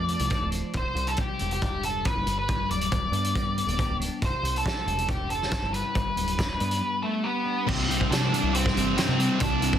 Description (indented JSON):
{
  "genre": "quiet-loud alternative rock",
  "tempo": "138 BPM",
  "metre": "4/4",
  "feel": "straight",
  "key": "C major",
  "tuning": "A4 = 436 Hz",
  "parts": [
    { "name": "octave-fuzz lead guitar", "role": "melody", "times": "0.0-9.8 s", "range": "A3 to D5", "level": "-28 LUFS", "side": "equal", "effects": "distortion" },
    { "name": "twelve-string electric guitar", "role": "arpeggios", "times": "0.0-7.7 s", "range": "C2 to G4", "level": "-34 LUFS", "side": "left 2 dB", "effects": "none" },
    { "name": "overdriven picked electric bass", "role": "bass", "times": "0.0-9.8 s", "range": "C1 to C3", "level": "-30 LUFS", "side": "equal", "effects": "none" },
    { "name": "loose indie drum kit", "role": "drums", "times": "0.1-9.8 s", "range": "crash cymbal, hi-hat, kick drum, snare drum", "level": "-29 LUFS", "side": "equal", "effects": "none" },
    { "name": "fuzz guitar", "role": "riff", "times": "7.7-9.8 s", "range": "C2 to C3", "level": "-29 LUFS", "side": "right 16 dB", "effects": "distortion" },
    { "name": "thick fuzz guitar", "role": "riff", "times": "7.7-9.8 s", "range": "C2 to C3", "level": "-28 LUFS", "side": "left 12 dB", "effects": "distortion" }
  ],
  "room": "light reverb",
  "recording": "dense, heavily limited modern master",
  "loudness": "-24 LUFS",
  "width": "side -10 dB against mid",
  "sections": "0.0-7.7 A section; 7.7-9.8 B section",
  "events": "none",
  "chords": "0.0 F6; 0.7 C; 2.3 G; 4.2 C; 5.9 G; 7.7 Csus2",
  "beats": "0.31 | 0.75 1.18 1.61 2.05 | 2.48 2.92 3.35 3.78 | 4.22 4.65 5.08 5.52 | 5.95 6.38 6.82 7.25 | 7.68 8.11 8.54 8.97 | 9.40"
}